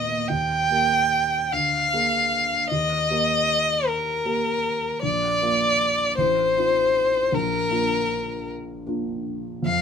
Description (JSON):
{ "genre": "classical, romantic duo for violin and grand piano", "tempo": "52 BPM (dotted quarters)", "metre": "6/8", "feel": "rubato", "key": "Eb major", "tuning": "A4 = 440 Hz", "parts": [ { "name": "rich violin", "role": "melody", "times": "0.0-9.8 s", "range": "Bb4 to G5", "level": "-20 LUFS", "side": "left 1 dB", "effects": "none" }, { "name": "dark baby grand piano", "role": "accompaniment", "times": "0.0-9.8 s", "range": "A1 to Bb4", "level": "-28 LUFS", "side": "right 1 dB", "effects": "none" } ], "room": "light reverb", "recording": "minimal, uncompressed stereo recording", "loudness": "-20 LUFS", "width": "side -7 dB against mid", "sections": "0.3-9.8 A section", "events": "none", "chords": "0.3 Eb; 1.5 Bb7/D; 2.7 Eb; 5.0 Bb; 6.2 F7/A; 7.3 Bb" }